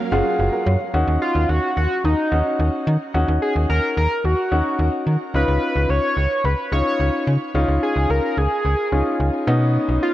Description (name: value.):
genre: pop.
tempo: 109 BPM.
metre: 4/4.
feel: straight.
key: Eb minor.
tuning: A4 = 439 Hz.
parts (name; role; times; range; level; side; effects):
string machine, violas; sustained chords; 0.0-0.9 s; Gb3 to F5; -34 LUFS; right 1 dB; ensemble chorus, shimmer reverb.
nylon-string guitar; arpeggios; 0.0-0.9 s; Bb3 to F5; -31 LUFS; right 4 dB; shimmer reverb, tape echo.
clear baby grand piano; accompaniment; 0.1-10.1 s; B3 to Ab4; -23 LUFS; left 1 dB; shimmer reverb.
slap-like FM bass; bass; 0.1-10.0 s; Gb1 to Eb3; -19 LUFS; equal; none.
octave-doubled lead; melody; 1.2-10.1 s; Eb4 to Db5; -22 LUFS; equal; chorus, shimmer reverb, tape echo.
room: moderate lush hall reverb, RT60 3.1 s.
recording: worn, warbling old tape, cassette tape, warbly pitch drift.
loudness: -17 LUFS.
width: side -14 dB against mid.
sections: 0.9-10.1 A section.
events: none.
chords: 0.0 Gbmaj7; 0.9 Ebm7; 5.3 Dbadd9; 9.5 Badd9.